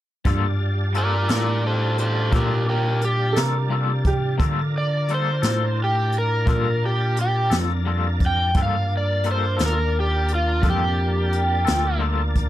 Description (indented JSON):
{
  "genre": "slow blues",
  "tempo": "58 BPM (dotted quarters)",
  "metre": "12/8",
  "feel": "straight",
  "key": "G minor",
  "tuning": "A4 = 440 Hz",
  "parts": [
    { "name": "electric guitar at the edge of break-up", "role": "accompaniment", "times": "0.2-12.2 s", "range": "G3 to A4", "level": "-28 LUFS", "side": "left 7 dB", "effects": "tremolo" },
    { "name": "tonewheel organ", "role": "sustained chords", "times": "0.2-12.5 s", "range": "G3 to A5", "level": "-30 LUFS", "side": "equal", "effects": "chorus vibrato, slow rotary speaker" },
    { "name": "jazz brush drum kit", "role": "drums", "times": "0.2-12.5 s", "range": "hi-hat, kick drum, snare drum", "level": "-24 LUFS", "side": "equal", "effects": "none" },
    { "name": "tine electric piano", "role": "bass", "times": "0.3-12.5 s", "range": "D2 to D3", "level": "-22 LUFS", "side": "equal", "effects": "ensemble chorus" },
    { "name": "overdriven slide guitar", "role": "melody", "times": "1.0-12.0 s", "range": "F4 to G5", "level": "-24 LUFS", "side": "equal", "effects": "none" },
    { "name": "clear upright piano", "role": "second line", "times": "3.3-4.4 s", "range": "G4 to Bb4", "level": "-27 LUFS", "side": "right 5 dB", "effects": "none" }
  ],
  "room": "light reverb",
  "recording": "none",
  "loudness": "-19 LUFS",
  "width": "side -13 dB against mid",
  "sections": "0.3-12.5 A section",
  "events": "none",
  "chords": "0.3 Gm9",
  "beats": "| 0.25 1.29 2.33 3.37 | 4.40 5.44 6.48 7.52 | 8.55 9.59 10.63 11.67"
}